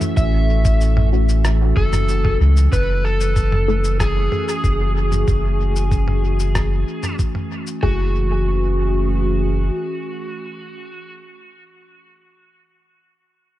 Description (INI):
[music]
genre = ambient dub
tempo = 94 BPM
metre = 4/4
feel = straight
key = F# minor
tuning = A4 = 439 Hz
[part]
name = overdriven slide guitar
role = melody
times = 0.0-11.1 s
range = F#4 to E5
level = -25 LUFS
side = equal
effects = dub echo
[part]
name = warbly tape-like pad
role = sustained chords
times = 0.0-11.1 s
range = E3 to G#5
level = -26 LUFS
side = right 1 dB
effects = chorus, built-in reverb
[part]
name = vibraphone with medium hard mallets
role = arpeggios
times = 0.0-2.7 s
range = E4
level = -35 LUFS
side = equal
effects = none
[part]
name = lo-fi sampler-style drum kit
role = drums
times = 0.0-7.8 s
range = cabasa, rim click, toms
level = -27 LUFS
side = equal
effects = dub echo
[part]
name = soft dub sub bass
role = bass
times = 0.2-9.7 s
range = F#1 to C#2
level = -17 LUFS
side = equal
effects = none
[part]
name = electronic kick drum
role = drums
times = 0.2-8.0 s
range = none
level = -20 LUFS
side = equal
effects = none
[part]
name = filtered dub chord stab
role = stabs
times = 1.1-11.6 s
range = A3 to A4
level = -29 LUFS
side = left 2 dB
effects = phaser, dub echo
[sound]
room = light reverb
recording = echo-heavy mix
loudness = -16 LUFS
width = side -15 dB against mid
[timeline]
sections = 0.0-2.7 A section; 2.7-7.8 B section; 7.8-10.4 C section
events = filter sweep on synth stab 2.7-7.8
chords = 0.0 A6; 2.7 F#m9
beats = | 0.17 0.81 1.45 2.08 | 2.72 3.36 4.00 4.64 | 5.28 5.91 6.55 7.19 | 7.83 8.47 9.11 9.74